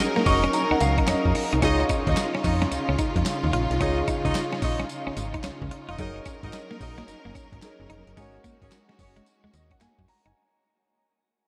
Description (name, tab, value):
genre	R&B, new jack swing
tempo	110 BPM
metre	4/4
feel	swing 64% on 16ths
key	Db major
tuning	A4 = 441 Hz
part	warm baby grand piano	accompaniment	0.0-10.5 s	Eb4 to Db6	-32 LUFS	equal	shimmer reverb
part	warm studio string section	sustained chords	0.0-10.3 s	Db3 to Bb4	-32 LUFS	equal	shimmer reverb
part	clear horn section	stabs	0.0-9.2 s	Db4 to Eb5	-34 LUFS	equal	analog delay, shimmer reverb
part	clean electric guitar	riff	0.2-10.3 s	Gb3 to F4	-34 LUFS	equal	subtle chorus, shimmer reverb
part	boom bap sampler-style drum kit	drums	0.2-10.3 s	handclaps, hi-hat, kick drum, snare drum, tambourine	-32 LUFS	equal	none
part	slap-like FM bass	bass	0.3-10.3 s	F1 to Gb2	-29 LUFS	equal	none
room	moderate huge ambient reverb, RT60 8.7 s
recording	dreamy mix soaked in reverb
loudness	-24 LUFS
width	mono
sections	0.0-10.4 A section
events	fade-out 0.0-10.4; grand piano fill 0.0-1.6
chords	0.0 Gb6; 1.6 Dbadd9; 6.0 Gb6; 8.2 Ab7sus4